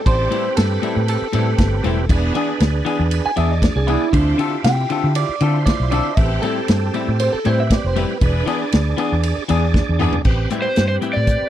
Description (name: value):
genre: straight-eighth soul blues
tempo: 118 BPM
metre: 4/4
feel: straight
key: A minor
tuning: A4 = 440 Hz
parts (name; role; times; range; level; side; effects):
- electric guitar through a small old amp; second line; 0.0-9.5 s; D4 to G#5; -23 LUFS; right 2 dB; none
- overdriven tonewheel organ; accompaniment; 0.0-11.5 s; C4 to D5; -25 LUFS; right 7 dB; slow rotary speaker, chorus vibrato
- bright studio string section; sustained chords; 0.1-10.1 s; B3 to C5; -30 LUFS; equal; none
- vintage muted fingered electric bass; bass; 0.1-11.5 s; E1 to D3; -19 LUFS; equal; none
- warm soul drum kit; drums; 0.1-11.4 s; crash cymbal, hi-hat, kick drum, ride cymbal, snare drum, toms; -21 LUFS; equal; none
- clean electric guitar; stabs; 0.3-11.2 s; A2 to A4; -24 LUFS; left 8 dB; spring reverb
- overdriven slide guitar; melody; 10.6-11.5 s; C5 to D5; -20 LUFS; equal; none
room: little or no reverb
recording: none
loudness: -16 LUFS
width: side -11 dB against mid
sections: 0.0-10.3 A section; 10.3-11.5 B section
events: clean electric guitar solo 0.0-10.3; drum fill 9.7-10.3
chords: 0.0 Am7; 2.1 E7; 4.1 Dm7; 6.2 Am7; 8.2 E7; 10.3 Am7